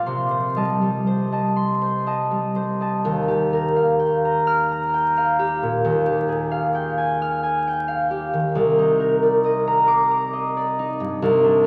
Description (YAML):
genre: classical, solo harp piece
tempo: 40-46 BPM (dotted quarters)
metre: 6/8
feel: rubato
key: C minor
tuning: A4 = 439 Hz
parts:
  - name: concert harp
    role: solo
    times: 0.0-11.7 s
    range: C2 to F6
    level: -21 LUFS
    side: equal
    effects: none
room: wet concert hall reverb, RT60 2.3 s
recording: vinyl crackle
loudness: -21 LUFS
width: mono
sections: 0.0-3.0 A section; 3.0-11.7 B section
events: none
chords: 0.1 Cm6; 3.0 Ebadd9; 5.8 Fm9/Eb; 8.5 Cm9